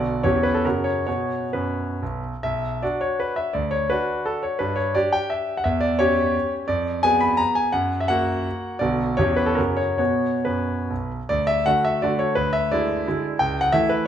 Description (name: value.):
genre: classical, romantic triple-time dance for piano with dotted rhythms.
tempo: 118-193 BPM.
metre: 3/4.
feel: rubato.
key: B minor.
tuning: A4 = 440 Hz.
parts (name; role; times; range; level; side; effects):
clear concert grand piano; solo; 0.0-14.1 s; B1 to Cb6; -20 LUFS; equal; none.
room: moderate recital hall reverb, RT60 1.7 s.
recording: minimal, uncompressed stereo recording.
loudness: -20 LUFS.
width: side -9 dB against mid.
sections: 0.0-2.4 A section; 2.4-11.3 A section; 11.3-14.1 B section.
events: none.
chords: 0.2 C#dim/E; 0.6 F#; 1.1 B5; 2.4 Bm; 3.5 D; 4.6 G5; 5.7 C#dim/E; 6.7 Fdim7; 7.7 F#; 8.8 Bm; 9.2 C#dim/E; 9.6 F#; 10.0 B5; 11.3 D; 12.4 E7/D; 13.4 A/C#.